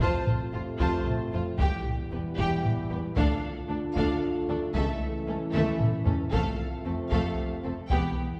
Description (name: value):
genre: cinematic, epic orchestral film score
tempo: 114 BPM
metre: 3/4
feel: straight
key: unclear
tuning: A4 = 440 Hz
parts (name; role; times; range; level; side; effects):
- dark symphonic violin section; melody; 0.0-8.1 s; A4 to A5; -41 LUFS; equal; none
- warm symphonic violin section; second line; 0.0-8.1 s; B3 to C5; -39 LUFS; equal; none
- rich symphonic viola section; accompaniment; 0.0-8.2 s; A3 to G4; -38 LUFS; equal; none
- clear trombone section; sustained chords; 0.0-8.4 s; C3 to A3; -39 LUFS; equal; none
- mellow French horn section; sustained chords; 0.0-8.4 s; B3 to F4; -37 LUFS; equal; none
- rich symphonic cello section; bass; 0.0-8.0 s; C#2 to F2; -38 LUFS; equal; none
- warm symphonic double bass section; bass; 0.0-8.0 s; E1 to D2; -40 LUFS; equal; none
- taiko ensemble; drums; 0.0-8.4 s; none; -32 LUFS; equal; none
room: wet scoring stage reverb, RT60 1.8 s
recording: heard from further back in the room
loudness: -28 LUFS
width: mono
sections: 0.0-8.4 A section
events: drum fill 5.5-6.3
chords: 0.0 F; 1.6 Em; 3.2 Dm; 4.7 A/C#; 6.3 F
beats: | 0.00 0.53 1.06 | 1.59 2.11 2.64 | 3.17 3.70 4.22 | 4.75 5.27 5.80 | 6.33 6.85 7.38 | 7.90